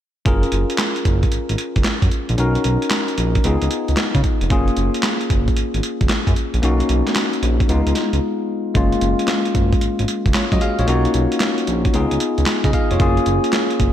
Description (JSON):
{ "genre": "R&B, new jack swing", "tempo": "113 BPM", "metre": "4/4", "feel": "swing 66% on 16ths", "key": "F# major", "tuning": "A4 = 440 Hz", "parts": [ { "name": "bell-like tine electric piano", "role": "accompaniment", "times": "0.3-13.9 s", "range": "G#3 to E#5", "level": "-20 LUFS", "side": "left 2 dB", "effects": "slapback echo" }, { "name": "smooth synth bass", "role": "bass", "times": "0.3-13.9 s", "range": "E#1 to C#3", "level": "-20 LUFS", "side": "right 1 dB", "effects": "none" }, { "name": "boom bap sampler-style drum kit", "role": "drums", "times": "0.3-13.9 s", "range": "handclaps, hi-hat, kick drum, snare drum", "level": "-20 LUFS", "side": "right 1 dB", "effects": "overdrive, vintage 12-bit sampler grit" } ], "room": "moderate lush hall reverb, RT60 1.9 s, digital ambience", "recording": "big arena sound", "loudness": "-16 LUFS", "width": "side -10 dB against mid", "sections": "0.3-8.8 A section; 8.8-13.9 B section", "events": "break 8.2-8.8", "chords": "0.3 F#maj9; 2.4 Bmaj7; 3.4 C#9; 4.5 F#maj9; 6.6 Bmaj7; 7.7 C#9; 8.8 F#maj9; 10.9 Bmaj7; 11.9 C#9; 13.0 F#maj9" }